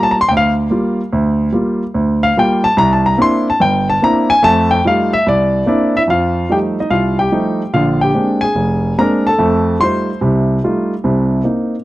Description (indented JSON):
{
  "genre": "solo jazz",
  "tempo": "145 BPM",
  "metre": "4/4",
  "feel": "swing 67% on 8ths",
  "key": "F mixolydian",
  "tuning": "A4 = 440 Hz",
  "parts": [
    { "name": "warm grand piano", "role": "solo", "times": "0.0-11.7 s", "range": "F1 to C6", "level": "-12 LUFS", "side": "equal", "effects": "none" }
  ],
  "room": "small room ambience",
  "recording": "dry, close 1970s-style studio recording",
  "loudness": "-12 LUFS",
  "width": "side -16 dB against mid",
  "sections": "0.0-6.1 A section; 6.1-11.8 B section",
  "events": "grand piano solo 0.0-6.1",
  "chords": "0.0 Gm7; 2.8 C9; 4.4 F9; 5.2 C9; 6.1 F9; 7.7 Bb9; 9.4 F9; 11.0 Cm7"
}